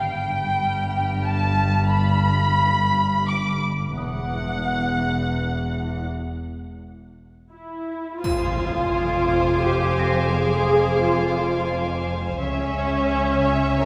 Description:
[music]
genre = cinematic, suspense film score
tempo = 86 BPM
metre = 3/4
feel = straight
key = unclear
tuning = A4 = 438 Hz
[part]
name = muted chamber violin section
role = melody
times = 0.0-13.9 s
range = F#5 to D6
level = -29 LUFS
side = equal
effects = none
[part]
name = muted chamber cello section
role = bass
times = 0.0-13.9 s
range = E2 to Db3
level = -30 LUFS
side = equal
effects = none
[part]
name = muted chamber double bass section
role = bass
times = 0.0-13.9 s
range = E1 to Db2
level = -28 LUFS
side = equal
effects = none
[part]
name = muted chamber violin section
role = texture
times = 0.0-3.6, 8.2-12.1 s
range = B5 to F6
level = -37 LUFS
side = equal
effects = none
[part]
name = celesta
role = texture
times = 1.9-6.1, 9.3-13.9 s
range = F#5 to Bb6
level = -37 LUFS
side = equal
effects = none
[part]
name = muted symphonic viola section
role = accompaniment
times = 7.5-13.9 s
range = Db4 to Ab4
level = -25 LUFS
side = equal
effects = none
[part]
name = muted studio violin section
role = second line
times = 8.2-13.9 s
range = C5 to F5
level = -30 LUFS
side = equal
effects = none
[part]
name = triangle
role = percussion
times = 8.2-9.6 s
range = none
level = -45 LUFS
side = equal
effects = none
[part]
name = impact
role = sound effects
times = 8.2-10.3 s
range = none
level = -33 LUFS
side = equal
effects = none
[sound]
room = wet church reverb, RT60 2.8 s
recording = recorded in a church or concert hall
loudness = -22 LUFS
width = mono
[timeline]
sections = 0.0-8.2 A section; 8.2-13.9 B section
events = break 6.1-8.2; impact 8.2-10.3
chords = 0.0 G; 4.0 Esus2; 6.1 N.C.; 8.2 Fm; 12.4 Dbm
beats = 0.53 1.23 | 1.92 2.60 3.28 | 3.97 4.67 5.38 | 6.09 6.80 7.52 | 8.24 8.94 9.64 | 10.34 11.04 11.74 | 12.43 13.12 13.83

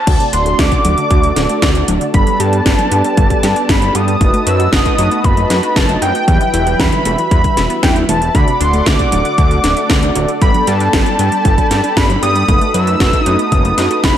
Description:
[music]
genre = italo disco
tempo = 116 BPM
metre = 4/4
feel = straight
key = G major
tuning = A4 = 439 Hz
[part]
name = wide unison lead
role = melody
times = 0.0-14.2 s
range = G5 to E6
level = -17 LUFS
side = equal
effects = tape echo
[part]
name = wide unison pluck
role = arpeggios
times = 0.0-14.1 s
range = C3 to B4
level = -23 LUFS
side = left 2 dB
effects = tape echo
[part]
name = warm analog pad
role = sustained chords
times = 0.1-14.2 s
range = E3 to D6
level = -22 LUFS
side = left 1 dB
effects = chorus
[part]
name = mellow synth brass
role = stabs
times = 0.1-14.2 s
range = F#3 to D5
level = -20 LUFS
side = right 3 dB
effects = chorus
[part]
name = fat analog bass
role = bass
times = 0.1-14.2 s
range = D1 to G2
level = -17 LUFS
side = equal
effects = none
[part]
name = electronic kick drum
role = drums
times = 0.1-14.1 s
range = none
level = -14 LUFS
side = equal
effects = none
[part]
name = house drum kit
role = drums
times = 0.1-14.1 s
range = crash cymbal, hi-hat, snare drum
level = -18 LUFS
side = equal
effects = high-pass filter on hats, high-pass filter on snare, high-pass filter on cymbals, high-pass filter on room, gated reverb
[sound]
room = light reverb, digital ambience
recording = none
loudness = -10 LUFS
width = side -10 dB against mid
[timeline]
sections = 0.1-14.2 A section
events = none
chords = 0.1 D; 2.1 Gadd9; 4.2 B7/F#; 6.3 Emadd9; 8.3 D; 10.4 Gadd9; 12.5 B7/F#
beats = | 0.07 0.59 1.11 1.62 | 2.14 2.66 3.18 3.69 | 4.21 4.73 5.25 5.76 | 6.28 6.80 7.31 7.83 | 8.35 8.87 9.38 9.90 | 10.42 10.93 11.45 11.97 | 12.49 13.00 13.52 14.04

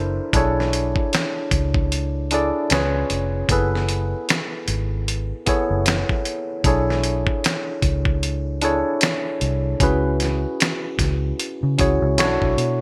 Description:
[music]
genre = R&B, neo-soul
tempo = 76 BPM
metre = 4/4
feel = swing 60% on 16ths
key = B dorian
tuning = A4 = 440 Hz
[part]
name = tine electric piano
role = accompaniment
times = 0.0-12.8 s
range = B3 to D5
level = -25 LUFS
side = equal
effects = none
[part]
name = vintage muted fingered electric bass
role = bass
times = 0.0-12.8 s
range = E#1 to C#3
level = -25 LUFS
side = equal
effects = none
[part]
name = dusty soul sampler-style drum kit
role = drums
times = 0.3-12.8 s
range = hi-hat, kick drum, snare drum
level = -24 LUFS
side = equal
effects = gated reverb
[sound]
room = moderate plate reverb, RT60 2.8 s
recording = bright 1980s-style digital production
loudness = -21 LUFS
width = mono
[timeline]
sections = 0.0-12.8 A section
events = none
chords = 0.3 Bm11; 2.7 C#7; 3.5 F#m11; 6.6 Bm11; 9.8 C#m7; 12.2 Bm9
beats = | 0.33 1.12 1.91 2.70 | 3.49 4.28 5.07 5.86 | 6.65 7.44 8.23 9.02 | 9.81 10.60 11.38 12.17

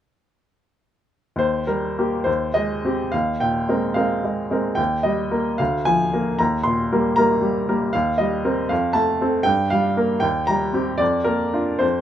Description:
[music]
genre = classical, romantic character piece for solo piano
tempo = 69-80 BPM (dotted quarters)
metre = 6/8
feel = rubato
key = Eb major, Bb major from 7.9 s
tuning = A4 = 440 Hz
[part]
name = bright upright piano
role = solo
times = 1.4-12.0 s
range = D2 to C6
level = -18 LUFS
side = equal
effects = none
[sound]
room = light reverb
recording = none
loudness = -18 LUFS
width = side -10 dB against mid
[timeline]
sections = 1.4-12.0 A section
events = none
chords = 1.4 Eb; 2.3 Abmaj7/Eb; 3.1 Bbsus2/Eb; 4.8 Eb; 5.6 Bb/D; 6.4 Eb; 7.9 Cm7/Eb; 8.7 F; 9.5 Gm7; 10.2 Cm7/Eb; 11.0 Bb/F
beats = | 1.41 2.27 | 3.13 3.96 | 4.78 5.60 | 6.39 7.16 | 7.94 8.71 | 9.46 10.23 | 11.00 11.83

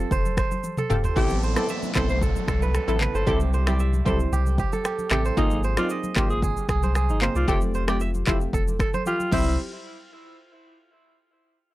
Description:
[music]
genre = afrobeats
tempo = 114 BPM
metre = 4/4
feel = straight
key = unclear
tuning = A4 = 440 Hz
[part]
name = analog pluck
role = accompaniment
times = 0.0-9.5 s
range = G3 to A4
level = -29 LUFS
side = equal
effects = chorus
[part]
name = kora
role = riff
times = 0.0-9.6 s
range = G4 to E5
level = -30 LUFS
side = right 5 dB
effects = tape echo
[part]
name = warm sub bass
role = bass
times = 0.0-9.6 s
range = E1 to C2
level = -25 LUFS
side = equal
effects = none
[part]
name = afro-pop drum kit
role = drums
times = 0.1-9.5 s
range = crash cymbal, finger snaps, handclaps, kick drum, rim click, shaker, toms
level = -26 LUFS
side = equal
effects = none
[part]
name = congas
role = percussion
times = 0.1-9.6 s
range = none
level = -34 LUFS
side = left 2 dB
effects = none
[part]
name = growling alto saxophone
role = melody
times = 1.2-9.6 s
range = Eb4 to C5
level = -29 LUFS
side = left 1 dB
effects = none
[part]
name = downlifter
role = sound effects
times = 1.2-5.4 s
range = none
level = -36 LUFS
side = equal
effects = none
[sound]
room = little or no reverb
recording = dry, gritty hardware recording, transformer saturation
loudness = -21 LUFS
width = side -16 dB against mid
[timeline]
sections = 0.0-1.2 A section; 1.2-9.6 B section; 9.6-11.7 C section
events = drum fill 0.6-1.2, 9.1-9.6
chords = 0.0 Fadd9; 1.2 Amadd9; 3.3 C; 5.4 Ab6; 7.5 Fadd9; 9.3 C; 9.6 N.C.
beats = 0.11 0.64 | 1.16 1.69 2.22 2.74 | 3.27 3.80 4.32 4.85 | 5.38 5.90 6.43 6.95 | 7.48 8.01 8.53 9.06

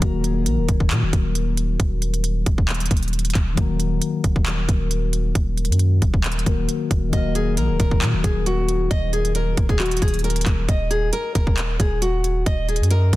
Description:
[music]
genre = hip hop, trap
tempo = 135 BPM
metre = 4/4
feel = half-time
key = Eb minor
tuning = A4 = 441 Hz
[part]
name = mellow tine electric piano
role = accompaniment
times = 0.0-10.7 s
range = Eb3 to Bb4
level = -26 LUFS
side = left 6 dB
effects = phaser, low-pass filter
[part]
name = hard-hitting 808-style bass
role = bass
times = 0.0-13.2 s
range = Eb1 to Bb2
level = -22 LUFS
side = equal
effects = none
[part]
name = trap drum kit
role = drums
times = 0.0-13.2 s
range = handclaps, hi-hat, kick drum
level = -21 LUFS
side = equal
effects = none
[part]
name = nylon-string guitar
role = melody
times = 7.1-13.2 s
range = Gb4 to Eb5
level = -25 LUFS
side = left 1 dB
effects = low-pass filter, ping-pong delay
[sound]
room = digital ambience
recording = dense, heavily limited modern master, low-pass filter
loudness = -18 LUFS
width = side -17 dB against mid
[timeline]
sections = 0.0-13.2 A section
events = break 0.0-7.1; filter sweep 0.0-7.1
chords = 0.0 Ebm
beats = | 0.02 0.46 0.91 1.35 | 1.80 2.24 2.69 3.13 | 3.57 4.02 4.46 4.91 | 5.35 5.80 6.24 6.68 | 7.13 7.57 8.02 8.46 | 8.91 9.35 9.80 10.24 | 10.69 11.13 11.57 12.02 | 12.46 12.91

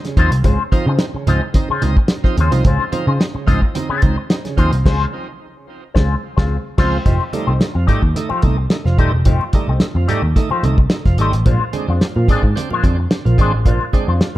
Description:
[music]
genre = funk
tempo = 109 BPM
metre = 4/4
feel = straight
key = unclear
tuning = A4 = 441 Hz
[part]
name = overdriven tonewheel organ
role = stabs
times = 0.0-14.4 s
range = Bb2 to Eb4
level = -24 LUFS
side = right 4 dB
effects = slow rotary speaker, tape echo
[part]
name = cloth-damped thuddy drum kit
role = drums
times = 0.0-14.3 s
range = crash cymbal, hi-hat, kick drum, snare drum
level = -16 LUFS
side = equal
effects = none
[part]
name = electric guitar with an envelope filter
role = accompaniment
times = 0.1-14.2 s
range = Ab3 to Eb5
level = -23 LUFS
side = left 6 dB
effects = wah
[part]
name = congas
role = percussion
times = 0.1-14.4 s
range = none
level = -26 LUFS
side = right 4 dB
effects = none
[part]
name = vintage muted picked electric bass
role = bass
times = 0.2-14.2 s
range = Eb1 to Db3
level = -17 LUFS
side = equal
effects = none
[sound]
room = light reverb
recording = dark, warm production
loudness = -14 LUFS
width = side -15 dB against mid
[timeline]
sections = 0.0-7.1 A section; 7.1-14.4 B section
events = band accent 4.9-7.1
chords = 0.0 Dbmaj7; 7.1 F9; 11.5 Bb9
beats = | 0.45 1.00 1.55 2.10 | 2.65 3.20 3.75 4.30 | 4.86 5.41 5.96 6.51 | 7.06 7.61 8.16 8.71 | 9.26 9.81 10.36 10.91 | 11.46 12.01 12.56 13.11 | 13.66 14.21

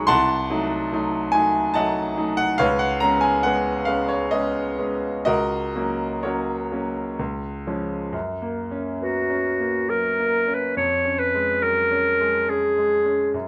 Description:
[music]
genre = classical, romantic duo for clarinet and grand piano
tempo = 60-73 BPM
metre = 3/4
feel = rubato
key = F# major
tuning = A4 = 441 Hz
[part]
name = bright grand piano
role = accompaniment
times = 0.0-13.5 s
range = C2 to C#6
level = -24 LUFS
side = equal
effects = none
[part]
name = bright clarinet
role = melody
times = 9.0-13.3 s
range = F#4 to C#5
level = -22 LUFS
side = equal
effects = none
[sound]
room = moderate large studio reverb, RT60 0.9 s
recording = none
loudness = -23 LUFS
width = mono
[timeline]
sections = 0.0-8.1 A section; 8.1-13.5 B section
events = none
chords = 0.1 Cdim7; 2.6 C#5; 5.3 F#/C#; 7.2 C#; 8.1 F#; 10.8 C#/E#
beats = | 0.10 0.92 1.75 | 2.60 3.44 4.31 | 5.26 6.24 7.18 | 8.13 9.01 9.89 | 10.76 11.63 12.48 | 13.34

